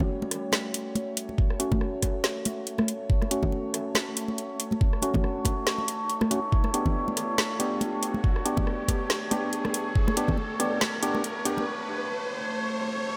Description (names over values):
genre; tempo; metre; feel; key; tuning
deep dubstep; 140 BPM; 4/4; swing 56% on 16ths, half-time; F# phrygian; A4 = 445 Hz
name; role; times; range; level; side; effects
overtone-sweeping drone; sustained chords; 0.0-13.2 s; A3 to C#5; -36 LUFS; equal; chorus, built-in reverb
percussive organ stab; stabs; 0.0-11.7 s; A3 to G4; -34 LUFS; equal; subtle chorus, dub echo
electronic kick drum; drums; 0.0-10.4 s; none; -28 LUFS; equal; none
congas; percussion; 0.0-11.7 s; none; -33 LUFS; equal; none
riser; sound effects; 4.5-13.2 s; none; -40 LUFS; equal; none
garage drum kit; drums; 0.3-11.6 s; hi-hat, rim click, snare drum; -31 LUFS; equal; none
room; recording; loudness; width
moderate echo chamber reverb, RT60 2.2 s; none; -27 LUFS; mono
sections
0.0-13.2 A section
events
build-up 0.0-13.2; filter sweep on synth stab 0.0-13.2; riser 4.5-13.2; break 11.7-13.2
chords
0.0 F#m; 6.5 G